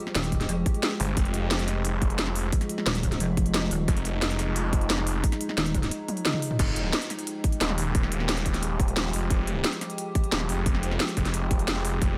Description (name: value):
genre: dark technical drum and bass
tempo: 177 BPM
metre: 4/4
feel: straight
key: F minor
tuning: A4 = 440 Hz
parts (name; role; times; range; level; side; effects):
- metallic inharmonic drone; sustained chords; 0.0-12.2 s; F3 to G4; -35 LUFS; equal; chorus, built-in reverb, sidechain pumping
- drum and bass drum kit; drums; 0.1-12.1 s; crash cymbal, hi-hat, snare drum, toms; -31 LUFS; equal; studio reverb
- pulsing pluck wobble bass; bass; 0.2-0.6, 2.9-5.9 s; Eb1 to F1; -29 LUFS; equal; chorus
- electronic kick drum; drums; 0.3-12.1 s; none; -28 LUFS; equal; studio reverb
- snarling distorted saw bass; bass; 1.0-12.2 s; Eb1 to G1; -30 LUFS; equal; distortion, overdrive
room: digital ambience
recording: none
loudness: -26 LUFS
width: mono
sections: 0.0-6.6 A section; 6.6-12.2 A section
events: drop 0.0-6.6, 6.6-12.2; drum fill 6.1-6.6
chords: 0.0 Fmadd9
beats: 0.15 0.49 0.83 | 1.17 1.51 1.85 2.19 | 2.52 2.86 3.20 3.54 | 3.88 4.22 4.56 4.90 | 5.24 5.58 5.92 6.25 | 6.59 6.93 7.27 7.61 | 7.95 8.29 8.63 8.97 | 9.30 9.64 9.98 10.32 | 10.66 11.00 11.34 11.68 | 12.02